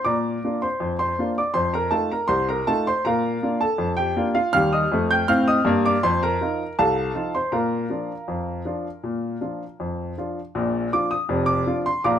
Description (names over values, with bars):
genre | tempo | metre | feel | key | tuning
ragtime piano | 80 BPM | 2/4 | straight | Bb major | A4 = 440 Hz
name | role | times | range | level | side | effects
clear upright piano | solo | 0.0-12.2 s | F1 to G6 | -20 LUFS | equal | none
room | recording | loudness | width
moderate club reverb, RT60 0.7 s | none | -20 LUFS | side -9 dB against mid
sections
0.0-10.5 A section; 10.5-12.2 A section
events
none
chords
0.0 Bb; 1.5 F7; 3.0 Bb; 4.5 Eb; 6.0 F7; 7.5 Bb